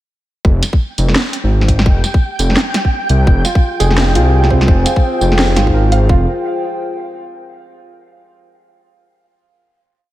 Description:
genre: half-time drum and bass.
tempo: 170 BPM.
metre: 4/4.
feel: swing 60% on 16ths, half-time.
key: F minor.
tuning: A4 = 440 Hz.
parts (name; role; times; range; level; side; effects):
dark detuned saw bass; bass; 0.4-6.3 s; F1 to C2; -12 LUFS; equal; none.
electronic kick drum; drums; 0.4-6.2 s; none; -12 LUFS; equal; none.
flickering grainy texture; texture; 1.3-6.1 s; G5; -25 LUFS; right 1 dB; built-in reverb.
drum and bass drum kit; drums; 0.6-6.0 s; hi-hat, snare drum, tambourine; -18 LUFS; equal; none.
dark analog pad; sustained chords; 3.3-7.5 s; F4 to G5; -21 LUFS; left 2 dB; chorus, sidechain pumping.
felt-muted upright piano; arpeggios; 3.4-6.3 s; C4 to F5; -21 LUFS; right 4 dB; vintage 12-bit sampler grit, diffuse ambient delay.
room: light reverb, digital ambience.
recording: none.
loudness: -11 LUFS.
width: side -15 dB against mid.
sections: 0.4-6.1 drop; 6.1-7.5 final chord.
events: drop 0.4-6.1.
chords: 0.4 Fmadd9.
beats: | 0.45 0.80 1.16 1.51 | 1.86 2.21 2.57 2.92 | 3.27 3.62 3.98 4.33 | 4.68 5.04 5.39 5.74 | 6.10 6.45 6.80 7.16.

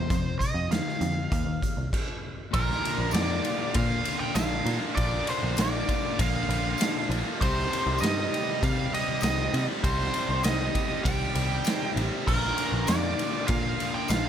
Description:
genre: classic rock.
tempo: 99 BPM.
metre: 4/4.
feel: straight.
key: unclear.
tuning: A4 = 440 Hz.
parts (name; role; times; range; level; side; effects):
nasal lead guitar with a parked wah; melody; 0.0-14.3 s; Bb4 to G5; -30 LUFS; right 2 dB; overdrive.
distorted electric guitar; riff; 0.0-14.3 s; F2 to G4; -34 LUFS; left 11 dB; distortion.
overdriven electric guitar; riff; 0.0-14.3 s; F2 to G4; -34 LUFS; right 13 dB; none.
picked electric bass; bass; 0.0-14.3 s; A1 to C3; -29 LUFS; equal; none.
raw garage drum kit; drums; 0.1-14.2 s; crash cymbal, hi-hat, kick drum, ride cymbal, snare drum; -29 LUFS; equal; none.
tambourine; percussion; 3.1-14.2 s; none; -41 LUFS; left 6 dB; none.
room: small room ambience.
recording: none.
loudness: -24 LUFS.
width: side -9 dB against mid.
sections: 0.0-2.5 A section; 2.5-14.3 B section.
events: stop 1.9-2.5.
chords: 0.1 F5; 1.3 Eb5; 1.9 N.C.; 2.5 Bb; 7.4 Cm; 12.3 Bb.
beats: | 0.11 0.72 1.32 1.93 | 2.54 3.15 3.76 4.37 | 4.97 5.58 6.19 6.80 | 7.41 8.01 8.62 9.23 | 9.84 10.45 11.05 11.66 | 12.27 12.88 13.49 14.10.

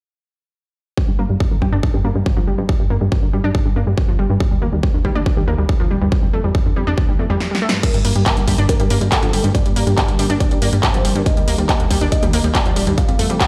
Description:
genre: uplifting trance.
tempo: 140 BPM.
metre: 4/4.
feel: straight.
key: G minor.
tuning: A4 = 441 Hz.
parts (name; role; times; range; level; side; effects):
electronic kick drum; drums; 1.0-13.5 s; none; -20 LUFS; equal; none.
analog pluck; arpeggios; 1.1-13.4 s; G2 to D4; -25 LUFS; equal; chorus, sidechain pumping, tape echo.
plucky analog bass; bass; 1.1-13.4 s; Eb1 to G2; -22 LUFS; equal; sidechain pumping.
punchy analog drum machine; drums; 7.4-13.5 s; crash cymbal, handclaps, hi-hat, snare drum; -24 LUFS; equal; sidechain pumping on hats, sidechain pumping on cymbals.
dense compressed supersaw; melody; 7.8-13.5 s; A4 to F5; -30 LUFS; equal; sidechain pumping, low-pass filter, tape echo.
lush unison pad; sustained chords; 7.8-13.5 s; C3 to Bb4; -29 LUFS; equal; none.
room: little or no reverb.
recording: played on a big sound system in a bare room, stone room reverb.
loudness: -17 LUFS.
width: mono.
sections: 1.0-7.8 A section; 7.8-13.5 B section.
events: filter sweep on analog synth bass 1.0-7.8; filter sweep on synth pluck 1.0-7.8; drum fill 7.4-7.8.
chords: 1.0 N.C.; 4.4 Eb; 6.1 Fadd9; 7.8 Gm; 11.3 Eb.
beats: | 0.98 1.41 1.83 2.26 | 2.69 3.12 3.55 3.98 | 4.41 4.83 5.26 5.69 | 6.12 6.55 6.98 7.41 | 7.83 8.26 8.69 9.12 | 9.55 9.98 10.40 10.83 | 11.26 11.69 12.12 12.55 | 12.98 13.40.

